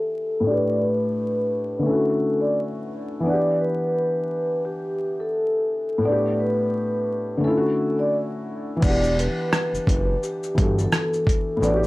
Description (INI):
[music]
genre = lo-fi hip hop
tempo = 86 BPM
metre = 4/4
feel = swing 57% on 16ths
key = E dorian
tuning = A4 = 440 Hz
[part]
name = vibraphone with soft mallets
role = melody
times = 0.0-11.9 s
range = G4 to D5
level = -24 LUFS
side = equal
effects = low-pass filter, analog delay
[part]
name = felt-muted upright piano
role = accompaniment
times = 0.0-11.9 s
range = A2 to F#5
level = -25 LUFS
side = left 1 dB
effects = low-pass filter
[part]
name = fat analog bass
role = bass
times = 8.8-11.9 s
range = E1 to A1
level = -23 LUFS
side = equal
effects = none
[part]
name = dusty soul sampler-style drum kit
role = drums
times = 8.8-11.9 s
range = crash cymbal, hi-hat, kick drum, rim click, shaker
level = -22 LUFS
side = equal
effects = overdrive, vintage 12-bit sampler grit
[sound]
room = moderate studio reverb, RT60 0.6 s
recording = vinyl crackle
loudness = -20 LUFS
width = side -19 dB against mid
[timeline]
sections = 0.0-8.8 A section; 8.8-11.9 B section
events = filter sweep 0.0-8.8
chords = 0.5 A9sus4; 1.9 Dmaj9; 3.2 Em9; 6.0 A9sus4; 7.4 Dmaj9; 8.8 Em9